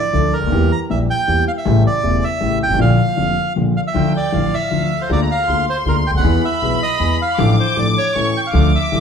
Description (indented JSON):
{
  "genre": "tango",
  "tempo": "157 BPM",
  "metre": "3/4",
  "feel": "rubato",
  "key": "D minor",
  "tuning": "A4 = 441 Hz",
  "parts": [
    { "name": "bandoneon", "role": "melody", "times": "0.0-9.0 s", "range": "Bb4 to Bb5", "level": "-20 LUFS", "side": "right 2 dB", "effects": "none" },
    { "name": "clear concert grand piano", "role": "accompaniment", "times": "0.1-9.0 s", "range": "E1 to A4", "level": "-18 LUFS", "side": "left 2 dB", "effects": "none" },
    { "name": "upright bass", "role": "bass", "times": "0.1-9.0 s", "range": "E1 to E2", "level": "-19 LUFS", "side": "right 1 dB", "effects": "none" },
    { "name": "warm studio violin section", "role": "second line", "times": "3.9-9.0 s", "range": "F5 to D6", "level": "-22 LUFS", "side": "left 2 dB", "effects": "none" }
  ],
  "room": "moderate large studio reverb, RT60 0.9 s",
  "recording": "band playing live in one room",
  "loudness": "-14 LUFS",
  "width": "side -7 dB against mid",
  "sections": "0.0-9.0 A section",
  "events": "none",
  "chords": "0.0 Dm; 0.5 Edim; 1.7 A7; 2.8 Bb; 3.9 Dm; 5.1 Bb7/D; 6.2 E; 7.4 Dm/A; 8.1 A"
}